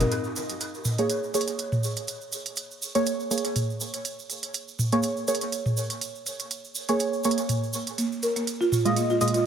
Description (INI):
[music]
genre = afro house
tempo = 122 BPM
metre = 4/4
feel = swing 54% on 16ths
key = Bb minor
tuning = A4 = 440 Hz
[part]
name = buzzing marimba with soft mallets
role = arpeggios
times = 0.0-0.1, 8.0-9.4 s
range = Bb3 to Bb4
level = -27 LUFS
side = right 1 dB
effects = dub echo
[part]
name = deep mellow chord stab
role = stabs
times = 0.0-9.5 s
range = Bb2 to Eb5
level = -27 LUFS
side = right 2 dB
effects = chorus, dub echo
[part]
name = afro-pop drum kit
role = drums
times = 0.0-9.4 s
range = hi-hat, toms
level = -29 LUFS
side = right 1 dB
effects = dub echo
[part]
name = egg shaker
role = percussion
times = 0.0-9.4 s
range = none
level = -35 LUFS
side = right 4 dB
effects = none
[sound]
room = moderate spring reverb, RT60 2.2 s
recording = echo-heavy mix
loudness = -25 LUFS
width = side -8 dB against mid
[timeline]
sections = 0.1-9.5 A section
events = none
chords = 0.1 Bbm7; 8.0 Fm7/Bb